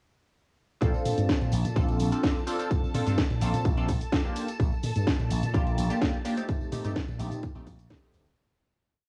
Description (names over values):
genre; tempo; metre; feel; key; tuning
filtered disco house; 127 BPM; 4/4; straight; Bb major; A4 = 440 Hz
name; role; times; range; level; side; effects
funky polysynth comp; accompaniment; 0.8-8.3 s; A3 to A4; -34 LUFS; equal; chorus, phaser, vintage 12-bit sampler grit, sidechain pumping, cassette tape
string machine, full ensemble; sustained chords; 0.8-8.4 s; A5; -43 LUFS; equal; ensemble chorus, sidechain pumping, cassette tape
slap bass with an envelope filter; bass; 0.8-8.2 s; Bb1 to Bb2; -31 LUFS; equal; tube saturation, sidechain pumping
electronic kick drum; drums; 0.8-8.0 s; none; -30 LUFS; equal; overdrive, cassette tape
house drum kit; drums; 0.8-8.4 s; hi-hat, shaker, snare drum; -35 LUFS; equal; overdrive, sidechain pumping on hats, cassette tape, sidechain pumping on perc
tambourine; percussion; 0.8-8.4 s; none; -52 LUFS; equal; sidechain pumping on perc
room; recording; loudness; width
light reverb; home recording on cassette, small room ambience; -28 LUFS; mono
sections
0.8-8.4 drop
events
drop 0.8-8.4; fade-out 5.9-8.4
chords
0.8 Bbmaj7; 4.4 Ebmaj9/Bb (rootless); 6.5 Cm13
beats
| 0.82 1.29 1.76 2.23 | 2.71 3.18 3.65 4.12 | 4.60 5.07 5.54 6.01 | 6.49 6.96 7.43 7.91